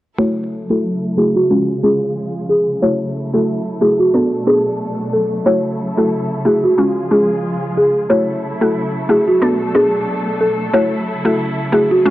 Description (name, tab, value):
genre	dancehall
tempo	91 BPM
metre	4/4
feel	swing 56% on 16ths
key	F# minor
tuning	A4 = 439 Hz
part	folk marimba with soft mallets	melody	0.2-12.0 s	F#4 to C#5	-16 LUFS	equal	low-pass filter
part	mallet-like synth pluck	accompaniment	0.2-12.1 s	G#3 to A4	-18 LUFS	equal	chorus, low-pass filter
part	warm studio string section	sustained chords	0.2-12.1 s	B2 to A4	-22 LUFS	equal	low-pass filter
room	light reverb, small room ambience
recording	dry, gritty hardware recording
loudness	-14 LUFS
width	side -15 dB against mid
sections	0.2-12.1 A section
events	filter sweep 0.2-12.1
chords	0.2 F#m7; 1.5 C#; 2.8 F#m7; 4.1 Bm7; 5.5 F#m7; 6.8 C#; 8.1 F#m7; 9.4 Bm7; 10.7 F#m7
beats	| 0.19 0.85 1.51 2.17 | 2.83 3.48 4.14 4.80 | 5.46 6.12 6.78 7.44 | 8.10 8.76 9.42 10.08 | 10.74 11.40 12.06